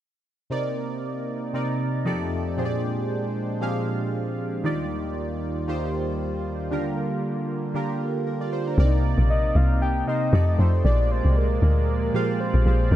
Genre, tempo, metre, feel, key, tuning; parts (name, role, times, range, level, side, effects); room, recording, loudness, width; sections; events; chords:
amapiano; 116 BPM; 4/4; swing 55% on 16ths; C minor; A4 = 439 Hz
warm analog keys; accompaniment; 0.5-13.0 s; Bb2 to F5; -27 LUFS; right 1 dB; chorus, phaser
warm analog pad; sustained chords; 0.5-13.0 s; Eb2 to G5; -30 LUFS; right 1 dB; chorus
deep log drum bass; bass; 8.8-13.0 s; Bb1 to F2; -19 LUFS; equal
soft octave-layered synth lead; melody; 9.3-13.0 s; Bb4 to G5; -28 LUFS; left 2 dB; chorus, analog delay
light reverb; dark, warm production; -22 LUFS; side -12 dB against mid
0.5-8.8 A section; 8.8-13.0 B section
drop 8.8-13.0
0.5 Cm9; 2.1 F13; 2.6 Bb13; 4.6 Ebmaj9; 6.7 Gm7/D; 8.8 Cm9; 10.3 F13; 10.8 Bb13